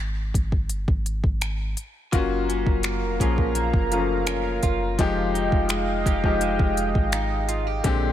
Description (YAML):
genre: contemporary R&B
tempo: 84 BPM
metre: 4/4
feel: straight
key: unclear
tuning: A4 = 441 Hz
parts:
  - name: soft 808-style bass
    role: bass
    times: 0.0-8.1 s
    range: F1 to Bb1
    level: -28 LUFS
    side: equal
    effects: none
  - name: smooth R&B drum kit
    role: drums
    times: 0.3-8.0 s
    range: finger snaps, hi-hat, kick drum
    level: -24 LUFS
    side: equal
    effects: overdrive
  - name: clear grand piano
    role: accompaniment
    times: 2.1-8.1 s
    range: D3 to Ab4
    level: -26 LUFS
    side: left 6 dB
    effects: none
  - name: chorused pulse-width pad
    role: sustained chords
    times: 2.1-8.1 s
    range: Ab3 to C6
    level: -28 LUFS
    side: right 2 dB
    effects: none
  - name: direct-recorded clean electric guitar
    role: arpeggios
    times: 2.1-8.1 s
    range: Bb2 to G4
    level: -30 LUFS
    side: right 6 dB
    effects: wide subtle chorus, ping-pong delay
room: digital ambience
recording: none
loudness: -21 LUFS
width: side -11 dB against mid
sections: 0.0-8.1 A section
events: none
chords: 0.0 N.C.; 2.1 Gbmaj7; 5.0 Fm9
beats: 0.70 1.42 | 2.13 2.84 3.56 4.27 | 4.99 5.70 6.42 7.13 | 7.84